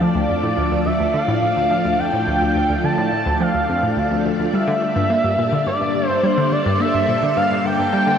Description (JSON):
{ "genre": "ambient, sequencer-driven space music", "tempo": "106 BPM", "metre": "4/4", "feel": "straight", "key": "G dorian", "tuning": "A4 = 440 Hz", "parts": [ { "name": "pulse-width lead", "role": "melody", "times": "0.0-8.2 s", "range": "C5 to A5", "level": "-20 LUFS", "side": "right 1 dB", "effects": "chorus, shimmer reverb, tape echo" }, { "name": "phased string machine", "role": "sustained chords", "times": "0.0-8.2 s", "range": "F3 to D5", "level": "-21 LUFS", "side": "left 1 dB", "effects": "ensemble chorus, phaser, shimmer reverb" }, { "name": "analog pluck", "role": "riff", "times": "0.0-8.2 s", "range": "D2 to Bb3", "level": "-22 LUFS", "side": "equal", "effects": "chorus, tape echo" } ], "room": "wet huge ambient reverb, RT60 7.7 s", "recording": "none", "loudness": "-16 LUFS", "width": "side -8 dB against mid", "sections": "0.0-8.2 A section", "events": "none", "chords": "0.0 Dm; 4.5 Gmadd9", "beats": "| 0.01 0.58 1.14 1.71 | 2.27 2.84 3.41 3.97 | 4.54 5.11 5.67 6.24 | 6.80 7.37 7.93" }